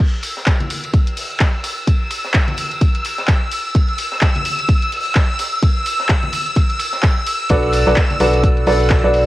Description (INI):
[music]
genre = piano house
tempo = 128 BPM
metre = 4/4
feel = swing 58% on 16ths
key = B minor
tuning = A4 = 439 Hz
[part]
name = string machine, violins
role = sustained chords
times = 0.0-9.3 s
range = E6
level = -22 LUFS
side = equal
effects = ensemble chorus, sidechain pumping, cassette tape
[part]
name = crunchy breakbeat drum kit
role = drums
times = 0.0-9.3 s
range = hi-hat, ride cymbal, snare drum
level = -30 LUFS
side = equal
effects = sidechain pumping on cymbals, high-pass filter on cymbals, small room ambience, cassette tape, sidechain pumping on hats, high-pass filter on hats, high-pass filter on snare, high-pass filter on room
[part]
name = electronic kick drum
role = drums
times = 0.0-9.0 s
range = none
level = -15 LUFS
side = equal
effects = small room ambience, cassette tape
[part]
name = house drum kit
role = drums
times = 0.0-9.2 s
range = crash cymbal, handclaps, hi-hat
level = -23 LUFS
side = equal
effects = small room ambience, cassette tape
[part]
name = tambourine and congas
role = percussion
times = 0.0-9.2 s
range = none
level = -32 LUFS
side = left 2 dB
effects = none
[part]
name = clear baby grand piano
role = riff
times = 7.5-9.2 s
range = D4 to D5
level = -15 LUFS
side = right 1 dB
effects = sidechain pumping, cassette tape, analog delay
[part]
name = organ-like FM bass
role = bass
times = 7.5-9.3 s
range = B1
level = -18 LUFS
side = equal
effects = sidechain pumping
[sound]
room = light reverb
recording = home recording on cassette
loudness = -14 LUFS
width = side -16 dB against mid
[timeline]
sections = 0.0-9.3 A section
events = none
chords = 0.0 N.C.; 7.5 Bm7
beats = | 0.00 0.47 0.94 1.41 | 1.88 2.34 2.81 3.28 | 3.75 4.22 4.69 5.16 | 5.62 6.09 6.56 7.03 | 7.50 7.97 8.44 8.91